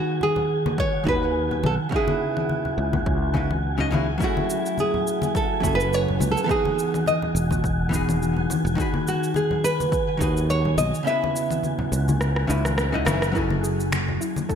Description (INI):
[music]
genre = sunset chillout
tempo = 105 BPM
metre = 4/4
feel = swing 55% on 16ths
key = F# dorian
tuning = A4 = 440 Hz
[part]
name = nylon-string guitar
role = melody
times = 0.0-12.7 s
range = F#4 to E5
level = -25 LUFS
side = right 1 dB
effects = digital delay
[part]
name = vintage hollow-body jazz guitar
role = accompaniment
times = 0.0-14.6 s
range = C#3 to D#5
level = -26 LUFS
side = moving between left 3 dB and right 5 dB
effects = auto-pan, digital delay
[part]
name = wind-like tuned noise texture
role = texture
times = 0.0-14.6 s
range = F#4 to G#5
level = -32 LUFS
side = equal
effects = built-in reverb, ensemble chorus
[part]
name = congas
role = percussion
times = 0.2-14.5 s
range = none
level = -31 LUFS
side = left 3 dB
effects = none
[part]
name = electronic kick drum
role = drums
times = 0.8-14.6 s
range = none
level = -28 LUFS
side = equal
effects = overdrive
[part]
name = fretless electric bass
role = bass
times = 1.1-14.2 s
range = E1 to D#2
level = -25 LUFS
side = equal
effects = none
[part]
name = electronic congas, shaker, rim click and finger snaps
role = drums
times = 2.4-14.6 s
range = none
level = -29 LUFS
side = left 1 dB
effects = overdrive, gated reverb
[part]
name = soft round pluck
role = arpeggios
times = 13.3-14.6 s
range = E4 to A4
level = -30 LUFS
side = right 2 dB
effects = wide subtle chorus, digital delay
[sound]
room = moderate plate reverb, RT60 2.2 s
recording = bright 1980s-style digital production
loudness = -20 LUFS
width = side -8 dB against mid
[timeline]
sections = 0.0-14.6 A section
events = kick drops out 11.1-13.4; drum fill 12.2-13.4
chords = 0.0 G#m7/D#; 1.9 C#m7; 4.2 F#m9; 6.5 Emaj9; 8.8 G#m7/D#; 11.1 C#m7; 13.4 F#m9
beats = 0.21 0.78 1.35 | 1.92 2.50 3.07 3.64 | 4.21 4.78 5.35 5.92 | 6.50 7.07 7.64 8.21 | 8.78 9.35 9.92 10.49 | 11.07 11.64 12.21 12.78 | 13.35 13.92 14.49